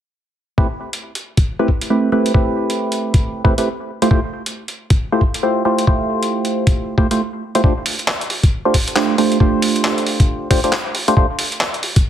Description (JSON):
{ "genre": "UK garage, two-step garage", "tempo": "136 BPM", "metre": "4/4", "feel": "swing 60% on 16ths", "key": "A minor", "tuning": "A4 = 440 Hz", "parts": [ { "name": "percussive organ stab", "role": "stabs", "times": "0.6-11.3 s", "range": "A3 to C5", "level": "-17 LUFS", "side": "right 1 dB", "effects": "chorus, phaser, tape echo" }, { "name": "electronic kick drum", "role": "drums", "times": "0.6-12.0 s", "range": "none", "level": "-14 LUFS", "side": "equal", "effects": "none" }, { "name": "boom bap sampler-style drum kit", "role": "drums", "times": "0.9-12.0 s", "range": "handclaps, hi-hat", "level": "-21 LUFS", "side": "equal", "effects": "none" } ], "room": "light reverb", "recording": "heavily compressed radio sound, multiband compression", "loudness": "-15 LUFS", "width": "side -10 dB against mid", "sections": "0.6-12.1 A section", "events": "none", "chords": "0.6 Am9; 3.9 Fmaj9/A; 7.6 G9sus4", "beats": "| 0.58 1.02 1.46 1.90 | 2.34 2.78 3.23 3.67 | 4.11 4.55 4.99 5.43 | 5.87 6.31 6.75 7.20 | 7.64 8.08 8.52 8.96 | 9.40 9.84 10.28 10.73 | 11.17 11.61" }